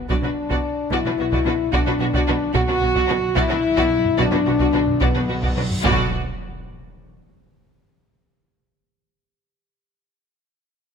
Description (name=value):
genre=cinematic, epic orchestral film score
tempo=73 BPM (dotted quarters)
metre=12/8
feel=straight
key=B minor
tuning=A4 = 440 Hz
part: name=warm French horn section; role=sustained chords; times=0.0-6.1 s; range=B3 to F#4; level=-21 LUFS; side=left 3 dB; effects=none
part: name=timpani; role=percussion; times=0.0-6.1 s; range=B2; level=-29 LUFS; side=equal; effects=none
part: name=impact and reverse cymbal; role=sound effects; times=0.0-9.1 s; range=none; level=-33 LUFS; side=equal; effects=none
part: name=rich symphonic violin section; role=melody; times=0.1-6.2 s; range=F#4 to D5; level=-30 LUFS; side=left 2 dB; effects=none
part: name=rich symphonic violin section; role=second line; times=0.1-6.2 s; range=B3 to F#4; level=-28 LUFS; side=equal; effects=none
part: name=rich symphonic viola section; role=accompaniment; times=0.1-6.2 s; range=F#4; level=-29 LUFS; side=right 2 dB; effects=none
part: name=rich symphonic double bass section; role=bass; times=0.1-6.2 s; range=B1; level=-27 LUFS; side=right 4 dB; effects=none
part: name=warm symphonic cello section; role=bass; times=0.1-6.1 s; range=B2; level=-28 LUFS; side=right 3 dB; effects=none
part: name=solo taiko drums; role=drums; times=0.1-6.9 s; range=none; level=-26 LUFS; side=equal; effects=none
room=light reverb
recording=close, detailed microphones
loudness=-17 LUFS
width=side -6 dB against mid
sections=0.0-5.8 A section; 5.8-9.1 B section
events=timpani fill 0.0-5.8; impact 0.0-2.5, 5.8-9.1; reverse cymbal 5.4-5.8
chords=0.0 Bm; 5.8 N.C.